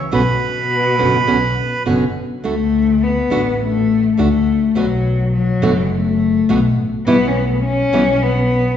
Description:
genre	tango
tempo	104 BPM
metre	4/4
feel	rubato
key	D major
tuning	A4 = 440 Hz
part	bandoneon	melody	0.1-1.8 s	B4	-18 LUFS	right 4 dB	none
part	warm cello	second line	0.1-8.8 s	B2 to C#4	-17 LUFS	left 4 dB	none
part	nylon-string guitar	accompaniment	0.1-8.0 s	B2 to F#4	-20 LUFS	right 2 dB	none
part	dark double bass	bass	0.1-8.8 s	F#1 to D2	-20 LUFS	equal	none
room	wet recital hall reverb, RT60 1.6 s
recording	recorded in a church or concert hall, nothing above 7.9 kHz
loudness	-14 LUFS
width	side -9 dB against mid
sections	0.0-2.4 A section; 2.4-8.8 B section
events	cello solo 2.4-8.8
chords	0.1 Bmadd9; 2.4 D5; 4.8 B7(no3); 7.1 E5/B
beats	| 0.12 0.70 1.28 1.86 | 2.44 3.02 3.60 4.18 | 4.76 5.34 5.91 6.49 | 7.07 7.64 8.22

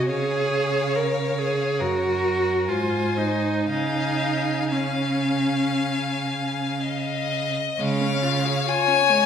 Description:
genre	classical, slow romantic movement for string quartet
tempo	53-72 BPM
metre	4/4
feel	rubato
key	Db major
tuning	A4 = 442 Hz
part	rich violin	melody	0.0-9.3 s	Db5 to Ab5	-27 LUFS	left 9 dB	none
part	rich violin	second line	0.0-9.3 s	Bb4 to F5	-28 LUFS	left 3 dB	none
part	rich viola	accompaniment	0.0-9.3 s	Ab3 to Bb4	-25 LUFS	right 1 dB	none
part	rich cello	bass	0.0-8.5 s	Gb2 to Db3	-27 LUFS	right 4 dB	none
room	wet recital hall reverb, RT60 1.3 s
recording	heard from further back in the room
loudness	-21 LUFS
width	side -8 dB against mid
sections	0.0-7.8 A section; 7.8-9.3 A section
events	none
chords	0.1 Db; 1.8 Gb; 2.7 Ab; 3.7 Db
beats	| 0.10 0.96 1.80 2.69 | 3.70 4.72 5.73 6.81 | 7.78 8.65

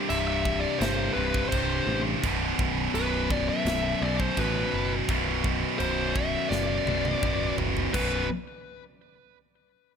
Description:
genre	heavy metal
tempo	84 BPM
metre	4/4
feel	straight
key	B phrygian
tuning	A4 = 441 Hz
part	heavy high-gain guitar	riff	0.0-8.2 s	B1 to C3	-32 LUFS	left 15 dB	distortion
part	heavy high-gain guitar	riff	0.0-8.2 s	B1 to C3	-30 LUFS	right 13 dB	distortion
part	high-gain lead guitar	melody	0.1-8.3 s	B4 to E5	-31 LUFS	left 3 dB	distortion, ping-pong delay
part	modern bright picked electric bass	bass	0.1-8.3 s	B0 to B1	-32 LUFS	equal	none
part	tight metal drum kit	drums	0.1-8.1 s	china cymbal, crash cymbal, kick drum, snare drum, toms	-33 LUFS	equal	none
room	studio ambience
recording	none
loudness	-24 LUFS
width	side -7 dB against mid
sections	0.0-7.9 A section; 7.9-10.0 B section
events	drum fill 6.5-7.9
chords	0.0 C5; 2.2 B5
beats	0.10 0.81 1.53 | 2.24 2.95 3.67 4.38 | 5.09 5.81 6.52 7.24 | 7.95

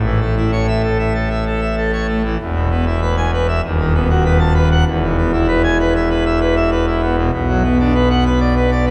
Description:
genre	classical, organ toccata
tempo	97 BPM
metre	4/4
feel	straight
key	unclear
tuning	A4 = 441 Hz
part	pipe organ, full organ	solo	0.0-8.9 s	D#1 to A5	-16 LUFS	equal	none
room	wet cathedral reverb, RT60 4.3 s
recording	dark, warm production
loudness	-16 LUFS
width	mono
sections	0.0-8.9 A section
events	none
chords	0.0 A; 2.4 E; 3.6 B7/D#; 4.9 E; 7.3 Bm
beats	0.53 1.15 1.78 | 2.40 3.02 3.64 4.25 | 4.87 5.49 6.10 6.72 | 7.34 7.95 8.57

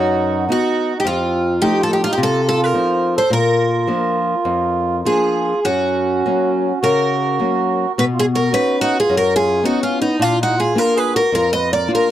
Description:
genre	fado-style ballad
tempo	106 BPM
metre	4/4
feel	rubato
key	unclear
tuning	A4 = 440 Hz
part	picked twelve-string acoustic guitar	melody	0.0-12.1 s	D#4 to Eb5	-18 LUFS	equal	none
part	mellow accordion	second line	0.0-12.1 s	B3 to Cb5	-21 LUFS	right 5 dB	none
part	nylon-string guitar	accompaniment	0.0-12.1 s	F2 to F#4	-20 LUFS	left 3 dB	none
room	light reverb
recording	dry, close 1970s-style studio recording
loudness	-15 LUFS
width	side -12 dB against mid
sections	0.0-12.1 A section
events	none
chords	0.0 B; 1.0 F7; 3.3 Bb; 5.6 Gb; 8.0 Badd9; 10.2 Bb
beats	0.48 | 1.04 1.61 2.17 2.73 | 3.30 3.88 4.45 5.04 | 5.64 6.23 6.81 7.40 | 7.96 8.52 9.07 9.62 | 10.17 10.74 11.30 11.88

